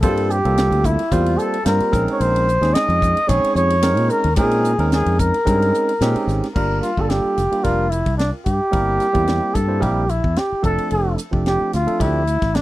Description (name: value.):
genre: electric jazz fusion.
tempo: 110 BPM.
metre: 4/4.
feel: swing 53% on 16ths.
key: unclear.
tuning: A4 = 439 Hz.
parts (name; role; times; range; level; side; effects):
trumpet with bucket mute; melody; 0.0-12.6 s; D4 to Eb5; -20 LUFS; equal; none.
barky tine electric piano; accompaniment; 0.0-12.3 s; F3 to C5; -23 LUFS; right 3 dB; none.
fingered electric bass; bass; 0.0-12.6 s; F1 to Bb2; -20 LUFS; equal; none.
tight funk drum kit; drums; 0.0-12.6 s; crash cymbal, hi-hat, kick drum, ride cymbal, snare drum; -24 LUFS; equal; none.
room: little or no reverb.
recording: dry, close 1970s-style studio recording.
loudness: -16 LUFS.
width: side -16 dB against mid.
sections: 0.0-6.6 A section; 6.6-12.6 B section.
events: none.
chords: 0.0 Gm11; 1.9 Bbm11; 6.6 Gm7; 8.7 C7/G; 10.6 Dm9/F.